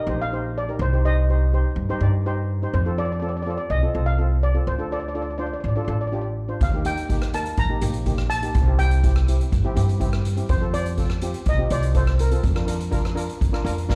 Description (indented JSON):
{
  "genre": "calypso",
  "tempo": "124 BPM",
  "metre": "4/4",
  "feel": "straight",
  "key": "unclear",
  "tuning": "A4 = 437 Hz",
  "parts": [
    { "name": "steel pan", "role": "melody", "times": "0.0-13.9 s", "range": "Bb4 to Bb5", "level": "-31 LUFS", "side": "equal", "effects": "none" },
    { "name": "steel pan", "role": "accompaniment", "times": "0.0-14.0 s", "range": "Bb3 to D5", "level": "-32 LUFS", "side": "equal", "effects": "none" },
    { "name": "upright bass", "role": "bass", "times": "0.1-14.0 s", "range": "A1 to G2", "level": "-24 LUFS", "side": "equal", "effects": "none" },
    { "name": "street-band drum kit", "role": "drums", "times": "6.6-14.0 s", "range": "hi-hat, kick drum, rim click, snare drum", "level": "-27 LUFS", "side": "equal", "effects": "none" }
  ],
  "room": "small room ambience",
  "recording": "live gig heard through the venue's PA, club reverb",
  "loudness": "-22 LUFS",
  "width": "mono",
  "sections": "0.0-14.0 A section",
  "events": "none",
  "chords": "0.0 Eb; 0.8 Cm; 2.7 F; 4.7 Dm; 6.6 Eb; 8.6 C; 10.5 F; 12.4 Bb/F"
}